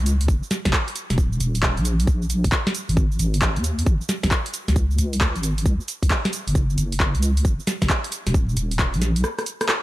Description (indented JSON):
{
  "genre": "UK garage, two-step garage",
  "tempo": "134 BPM",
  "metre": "4/4",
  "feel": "swing 65% on 16ths",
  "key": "unclear",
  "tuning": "A4 = 443 Hz",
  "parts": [
    { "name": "deep soft wobble bass", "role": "bass", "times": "0.0-9.2 s", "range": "D#1 to D#2", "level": "-21 LUFS", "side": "equal", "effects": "chorus, sidechain pumping" },
    { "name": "punchy analog drum machine", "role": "drums", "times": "0.1-9.8 s", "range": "handclaps, hi-hat, rim click, shaker, snare drum", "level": "-24 LUFS", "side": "equal", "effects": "none" },
    { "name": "electronic kick drum", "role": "drums", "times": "0.3-8.9 s", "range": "none", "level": "-21 LUFS", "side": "equal", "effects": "none" }
  ],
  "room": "little or no reverb",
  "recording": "vinyl crackle",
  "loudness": "-19 LUFS",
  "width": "side -17 dB against mid",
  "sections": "0.0-9.8 A section",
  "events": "drum fill 9.2-9.8",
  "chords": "none"
}